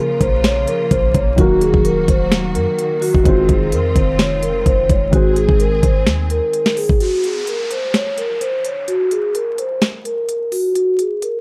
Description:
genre	hip hop, trap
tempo	128 BPM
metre	4/4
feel	half-time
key	unclear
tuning	A4 = 440 Hz
part	vibraphone with soft mallets	melody	0.0-11.4 s	Gb4 to Db5	-20 LUFS	equal	low-pass filter
part	dark concert grand piano	accompaniment	0.0-7.0 s	Db3 to C5	-24 LUFS	equal	none
part	clear symphonic string section	sustained chords	0.0-7.0 s	Db3 to Ab4	-30 LUFS	equal	none
part	clean 808-style bass	bass	0.2-7.0 s	Eb1 to Gb2	-23 LUFS	equal	none
part	trap drum kit	drums	0.2-11.3 s	hi-hat, kick drum, snare drum	-20 LUFS	equal	overdrive
part	downlifter	sound effects	7.0-10.8 s	none	-34 LUFS	equal	none
room	small room ambience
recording	dry, gritty hardware recording, vinyl crackle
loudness	-16 LUFS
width	mono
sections	0.0-7.0 A section; 7.0-11.4 B section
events	break 7.0-11.4; filter sweep on vibraphone 7.0-11.4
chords	0.0 Bbm; 1.4 Ebm; 3.3 Fm7; 5.1 Ab; 7.0 N.C.

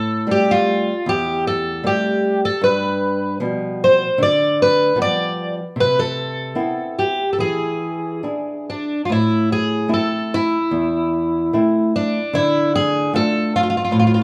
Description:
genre	fado-style ballad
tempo	74 BPM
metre	4/4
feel	uneven beats, rubato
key	A harmonic minor from 9.1 s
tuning	A4 = 442 Hz
part	fingerpicked twelve-string acoustic guitar	melody	0.0-14.2 s	D4 to D5	-21 LUFS	equal	none
part	flamenco guitar	accompaniment	0.0-14.2 s	E2 to G#4	-23 LUFS	equal	none
room	moderate large studio reverb, RT60 0.9 s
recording	band playing live in one room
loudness	-19 LUFS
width	mono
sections	0.0-9.1 A section; 9.1-14.2 B section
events	none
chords	0.0 Am7; 2.6 G7; 5.8 Cmaj7; 7.4 E7; 9.1 Am; 12.3 Dm

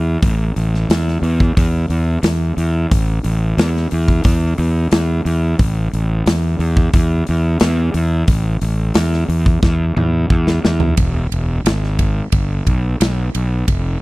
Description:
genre	blues rock power trio and southern rock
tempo	89 BPM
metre	4/4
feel	straight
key	unclear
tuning	A4 = 439 Hz
part	fuzz fingered electric bass	bass	0.0-14.0 s	E1 to E2	-16 LUFS	equal	overdrive
part	big rock drum kit	drums	0.2-13.8 s	hi-hat, kick drum, ride cymbal, snare drum, toms	-17 LUFS	equal	none
room	little or no reverb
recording	dry, close 1970s-style studio recording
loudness	-14 LUFS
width	side -21 dB against mid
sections	0.0-11.0 A section; 11.0-14.0 B section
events	drum fill 9.6-11.0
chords	none

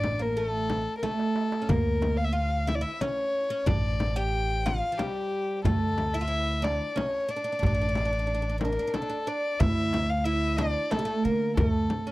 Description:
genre	Arabic maqam ensemble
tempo	91 BPM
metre	3/4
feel	straight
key	D maqam nahawand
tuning	A4 = 440 Hz
part	dark violin	melody	0.0-12.1 s	G4 to G5	-29 LUFS	left 2 dB	none
part	oud	second line	0.0-12.1 s	F3 to G4	-32 LUFS	right 4 dB	none
part	upright bass	bass	0.0-11.9 s	A1 to D3	-29 LUFS	equal	none
part	darbuka	percussion	0.0-11.7 s	none	-32 LUFS	right 2 dB	none
part	frame drum	percussion	0.0-12.1 s	none	-30 LUFS	left 2 dB	none
room	light reverb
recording	dry, close 1970s-style studio recording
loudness	-25 LUFS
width	side -18 dB against mid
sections	0.0-9.6 A section; 9.6-12.1 B section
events	drum fill 1.0-1.7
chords	none

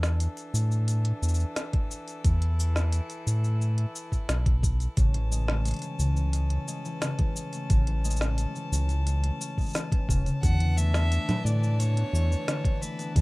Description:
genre	folktronica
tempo	88 BPM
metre	4/4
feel	straight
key	E mixolydian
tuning	A4 = 439 Hz
part	rich string quartet	sustained chords	0.0-13.2 s	E3 to A5	-39 LUFS	left 1 dB	none
part	round analog bass	bass	0.0-13.2 s	E1 to A2	-24 LUFS	equal	none
part	organic electronic drum kit	drums	0.0-13.2 s	cabasa, congas, hi-hat, snare drum	-33 LUFS	equal	none
part	electronic kick drum	drums	1.7-13.2 s	none	-25 LUFS	equal	none
part	concert harp	arpeggios	5.0-13.2 s	C#3 to C#4	-33 LUFS	left 2 dB	digital delay
part	warm violin	melody	10.4-13.2 s	B4 to F#5	-35 LUFS	right 1 dB	digital delay
room	light reverb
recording	rough home demo mix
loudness	-24 LUFS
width	side -23 dB against mid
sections	0.0-13.2 A section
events	none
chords	0.0 E7sus4; 5.0 Amaj7; 10.4 E7sus4

